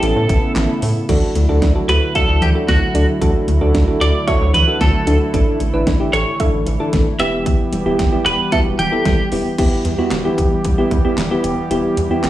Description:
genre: synth-pop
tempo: 113 BPM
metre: 4/4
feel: straight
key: D major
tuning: A4 = 441 Hz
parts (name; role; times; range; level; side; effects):
- twelve-string electric guitar; melody; 0.0-9.3 s; F#4 to E5; -20 LUFS; right 1 dB; tape echo
- soft electric-piano-like synth keys; accompaniment; 0.0-12.3 s; B3 to B4; -20 LUFS; equal; chorus
- warm analog pad; sustained chords; 0.0-12.3 s; C#3 to G4; -23 LUFS; right 1 dB; chorus
- rubbery square bass; bass; 0.0-12.3 s; E1 to A2; -18 LUFS; equal; none
- pop drum kit; drums; 0.0-12.3 s; crash cymbal, handclaps, hi-hat, kick drum, snare drum; -19 LUFS; equal; none
- soft round pluck; arpeggios; 1.1-9.5 s; E3 to E5; -25 LUFS; right 2 dB; chorus, tape echo
room: little or no reverb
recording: dry, gritty hardware recording, studio reverb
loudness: -14 LUFS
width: side -14 dB against mid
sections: 0.0-1.1 A section; 1.1-9.6 B section; 9.6-12.3 C section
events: none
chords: 0.0 Aadd9; 1.1 Dadd9; 5.3 Asus4; 7.2 Em

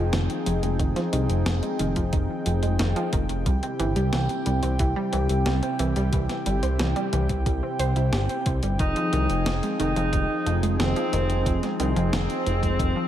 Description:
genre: synthwave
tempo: 90 BPM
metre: 4/4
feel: straight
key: F minor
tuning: A4 = 441 Hz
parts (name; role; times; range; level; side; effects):
- warm analog pad; sustained chords; 0.0-13.1 s; C3 to G5; -28 LUFS; left 1 dB; chorus, sidechain pumping
- analog pluck; arpeggios; 0.0-13.1 s; Eb3 to C5; -30 LUFS; right 2 dB; chorus, tape echo
- fat analog bass; bass; 0.0-12.9 s; F1 to C2; -25 LUFS; equal; none
- clean 12-bit digital drum machine; drums; 0.1-12.9 s; hi-hat, snare drum; -32 LUFS; equal; none
- electronic kick drum; drums; 0.8-12.9 s; none; -26 LUFS; equal; none
- breathy alto saxophone; melody; 8.8-13.1 s; C4 to Eb4; -28 LUFS; equal; tape echo
room: moderate plate reverb, RT60 2.1 s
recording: dreamy mix soaked in reverb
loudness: -22 LUFS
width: side -11 dB against mid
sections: 0.0-13.1 A section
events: none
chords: 0.0 Fm7; 3.5 C; 8.8 Fm7

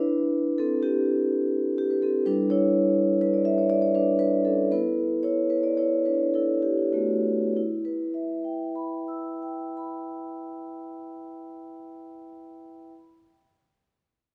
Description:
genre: classical, contemporary piece for solo vibraphone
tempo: 94-127 BPM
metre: 5/4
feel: rubato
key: E dorian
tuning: A4 = 440 Hz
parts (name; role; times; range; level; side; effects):
- vibraphone with soft mallets; solo; 0.0-12.9 s; G3 to E6; -26 LUFS; equal; none
room: wet recital hall reverb, RT60 1.6 s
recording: none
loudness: -25 LUFS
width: mono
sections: 0.0-7.6 A section; 7.6-10.7 B section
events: slowing down 2.3-7.6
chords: 0.0 D9sus4; 2.3 Gsus2; 4.7 B7sus4; 7.6 Em

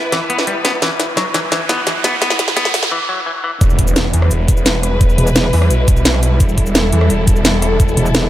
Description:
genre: dark technical drum and bass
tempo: 172 BPM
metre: 4/4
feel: straight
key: E minor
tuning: A4 = 442 Hz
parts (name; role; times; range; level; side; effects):
- dark symphonic string section; sustained chords; 0.0-8.3 s; G3 to B4; -21 LUFS; left 1 dB; sidechain pumping
- riser and impact; sound effects; 0.0-5.0 s; none; -23 LUFS; right 2 dB; none
- clean electric guitar; arpeggios; 0.1-3.5 s; E3 to B3; -20 LUFS; left 2 dB; spring reverb, sidechain pumping, dub echo
- drum and bass drum kit; drums; 0.1-8.2 s; cabasa, hi-hat, rim click, snare drum; -17 LUFS; equal; high-pass filter on hats, high-pass filter on snare, high-pass filter on perc, high-pass filter on room
- snarling distorted saw bass; bass; 3.6-8.0 s; E1 to E2; -15 LUFS; equal; distortion, overdrive, sidechain pumping
- electronic kick drum; drums; 3.6-7.9 s; none; -13 LUFS; equal; none
- metallic wobble bass; bass; 5.2-5.5, 8.0-8.3 s; E1; -14 LUFS; equal; chorus
room: light reverb, digital ambience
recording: high-pass filter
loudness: -12 LUFS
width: side -13 dB against mid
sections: 0.0-3.6 A section; 3.6-8.3 B section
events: build-up 0.0-3.6; drum fill 0.0-2.9; riser 0.0-2.9; break 2.9-3.6; drop 3.6-8.3; impact 3.6-5.0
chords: 0.0 E5; 3.6 Em

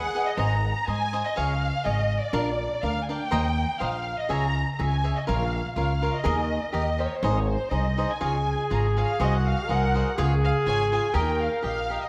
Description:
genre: mexican folk, mariachi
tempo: 123 BPM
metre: 2/4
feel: rubato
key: Ab major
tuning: A4 = 440 Hz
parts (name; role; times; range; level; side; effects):
- dark symphonic violin section; melody; 0.0-12.1 s; C5 to Bb5; -32 LUFS; equal; none
- warm trumpet; second line; 0.0-0.4, 8.2-11.9 s; Gb4 to Bb4; -31 LUFS; equal; none
- cavaquinho; accompaniment; 0.0-12.1 s; D4 to Bb5; -33 LUFS; equal; none
- upright bass; bass; 0.0-12.0 s; Ab1 to Ab2; -28 LUFS; equal; none
room: moderate concert hall reverb, RT60 1.9 s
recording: none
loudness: -25 LUFS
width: mono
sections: 0.4-12.1 A section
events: none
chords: 0.4 Abadd9; 1.4 Db; 2.3 Bb; 3.3 Eb6; 4.3 Dbm; 5.3 Bbm; 6.2 Ebsus4; 6.7 Eb; 7.2 Ab; 8.2 Db; 9.2 Ab7/C; 10.2 Db; 11.1 Eb

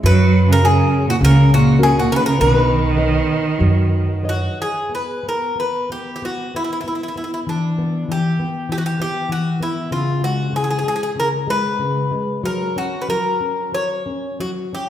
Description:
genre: fado-style ballad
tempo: 89-103 BPM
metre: 4/4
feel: rubato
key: B major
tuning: A4 = 440 Hz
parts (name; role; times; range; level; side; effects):
- clear cello; second line; 0.0-4.2 s; A#2 to F#3; -18 LUFS; right 4 dB; none
- nylon-string guitar; accompaniment; 0.0-14.9 s; C#3 to D#5; -21 LUFS; left 2 dB; none
- upright bass; bass; 0.0-4.5 s; B1 to F#2; -17 LUFS; right 1 dB; none
- Greek bouzouki; melody; 0.1-14.9 s; D4 to C#5; -21 LUFS; left 1 dB; none
room: wet recital hall reverb, RT60 1.7 s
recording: heard from further back in the room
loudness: -16 LUFS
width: side -11 dB against mid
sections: 0.0-4.9 A section; 4.9-14.9 B section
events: none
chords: 0.0 F#; 2.4 Badd9; 4.9 N.C.; 7.5 Em7; 9.9 C#5; 12.4 F#

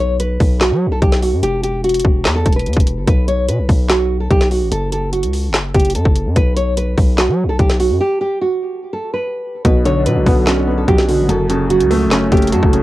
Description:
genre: hip hop, trap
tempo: 146 BPM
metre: 4/4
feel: half-time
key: B minor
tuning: A4 = 439 Hz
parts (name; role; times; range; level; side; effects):
- nylon-string guitar; melody; 0.0-12.8 s; F#4 to C#5; -18 LUFS; right 1 dB; low-pass filter, cassette tape, analog delay
- distorted 808-style bass; bass; 0.0-12.8 s; E1 to F#3; -18 LUFS; equal; distortion
- trap drum kit; drums; 0.2-12.8 s; handclaps, hi-hat, kick drum, snare drum; -15 LUFS; equal; none
- felt-muted upright piano; accompaniment; 9.7-12.8 s; F#2 to C#4; -15 LUFS; equal; low-pass filter, cassette tape
room: light reverb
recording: home recording on cassette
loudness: -13 LUFS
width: side -16 dB against mid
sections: 0.0-12.8 A section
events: break 8.0-9.6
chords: 0.0 B5; 1.4 Emadd9; 3.1 Asus2 (rootless); 4.7 F#m; 6.4 B5; 8.0 N.C.; 9.6 Bmadd9; 11.3 F#m

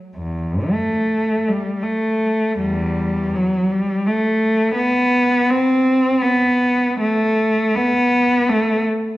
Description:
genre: classical, free, expressive piece for unaccompanied cello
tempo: 50-86 BPM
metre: 3/4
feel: rubato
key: unclear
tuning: A4 = 440 Hz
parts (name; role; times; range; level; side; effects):
- rich cello; solo; 0.2-8.8 s; E2 to C4; -16 LUFS; equal; none
room: wet recital hall reverb, RT60 1.6 s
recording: worn, warbling old tape, cassette tape, warbly pitch drift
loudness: -16 LUFS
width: side -16 dB against mid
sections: 0.0-9.2 A section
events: none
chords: none

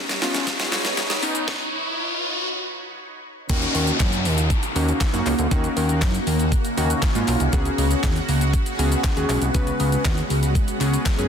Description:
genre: dance-pop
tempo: 119 BPM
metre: 4/4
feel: straight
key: unclear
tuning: A4 = 442 Hz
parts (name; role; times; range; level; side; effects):
- shimmering ambient pad; sustained chords; 0.0-11.3 s; C#3 to C#5; -27 LUFS; equal; chorus, built-in reverb, phaser, sidechain pumping
- mallet-like synth pluck; arpeggios; 0.0-1.4 s; B2 to D#4; -37 LUFS; left 1 dB; none
- riser and downlifter; sound effects; 0.0-7.5 s; none; -27 LUFS; left 1 dB; none
- pop drum kit; drums; 0.1-11.3 s; crash cymbal, handclaps, hi-hat, kick drum, shaker, snare drum; -24 LUFS; equal; none
- glassy digital keys; accompaniment; 0.2-11.3 s; A#3 to B4; -26 LUFS; equal; chorus, sidechain pumping
- group handclap; percussion; 0.7-11.2 s; none; -38 LUFS; left 10 dB; none
- fat analog bass; bass; 3.5-11.3 s; B1 to G#2; -22 LUFS; equal; sidechain pumping
room: light reverb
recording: dense, heavily limited modern master, high-pass filter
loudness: -19 LUFS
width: side -7 dB against mid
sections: 0.0-3.5 A section; 3.5-11.3 B section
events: build-up 0.0-3.5; drum fill 0.0-1.5; riser 0.0-3.5; stop 1.5-3.5; drop 3.5-11.3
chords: 0.0 Badd9; 3.5 D#m7; 7.5 C#7sus4

